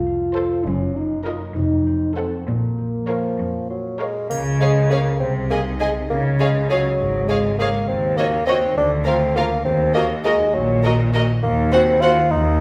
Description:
cinematic, playful, whimsical film cue; 67 BPM (dotted quarters); 6/8; straight; Bb minor, Db major from 4.3 s; A4 = 439 Hz
mellow French horn section; sustained chords; 0.0-4.0 s; Bb3 to F4; -25 LUFS; equal
concert harp; arpeggios; 0.0-12.6 s; F2 to C5; -30 LUFS; equal
bright studio cello section; bass; 0.0-12.6 s; C2 to Db3; -27 LUFS; equal
rich studio violin section; melody; 0.4-12.1 s; C5 to Ab5; -32 LUFS; equal
warm studio violin section; second line; 0.4-12.1 s; Bb4 to Eb5; -28 LUFS; equal
clear studio viola section; accompaniment; 0.4-12.1 s; F4 to Bb4; -32 LUFS; equal
rich studio double bass section; bass; 0.7-12.6 s; F1 to Eb2; -27 LUFS; equal
warm bassoon; accompaniment; 3.1-12.6 s; F3 to F4; -23 LUFS; equal
triangle; percussion; 4.3-5.5 s; -40 LUFS; equal
wet recital hall reverb, RT60 1.4 s; recorded in a church or concert hall; -20 LUFS; mono
0.0-4.3 A section; 4.3-12.6 B section
0.0 F; 0.7 Ebm/Gb; 1.6 F7b9; 2.5 Bbm; 4.3 Db; 5.2 Ab/C; 6.1 Db; 7.9 Ebm7; 8.8 Bb/D; 9.7 Ebm; 11.4 Cm7b5/Eb

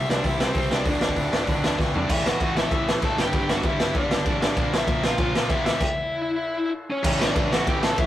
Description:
punk rock; 194 BPM; 4/4; straight; A4 = 440 Hz
high-gain lead guitar; melody; 0.0-8.1 s; C4 to A5; -27 LUFS; left 1 dB; distortion
tight distorted guitar; riff; 0.0-8.1 s; D2 to C4; -31 LUFS; left 5 dB; distortion
tight distorted guitar; riff; 0.0-8.1 s; D2 to A4; -30 LUFS; right 3 dB; distortion
growling picked electric bass; bass; 0.0-8.1 s; D1 to Bb2; -31 LUFS; equal; overdrive
raw garage drum kit; drums; 0.1-8.1 s; crash cymbal, hi-hat, kick drum, ride cymbal, snare drum, toms; -23 LUFS; equal
light reverb; rough rehearsal-room recording, warm saturation; -21 LUFS; side -13 dB against mid
0.0-2.1 A section; 2.1-7.0 B section; 7.0-8.1 C section
drum fill 1.8-2.1; stop 5.8-7.0
0.0 C; 0.9 D5; 2.1 A5; 3.2 G5; 4.6 Bb; 5.7 A5; 7.0 A

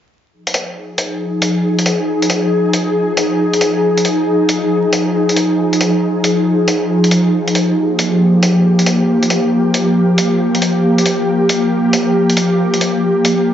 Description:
future garage; 137 BPM; 4/4; swing 66% on 16ths; F minor; A4 = 443 Hz
ethereal airy pad; sustained chords; 1.0-13.5 s; F3 to Ab4; -12 LUFS; equal; ensemble chorus, built-in reverb, vintage 12-bit sampler grit
electronic hi-hat; drums; 0.5-13.4 s; -19 LUFS; equal
moderate huge ambient reverb, RT60 3.7 s; heavily compressed radio sound, vinyl crackle, nothing above 7.6 kHz; -12 LUFS; side -10 dB against mid
0.3-13.5 A section
0.3 Fm7; 7.3 Gm7

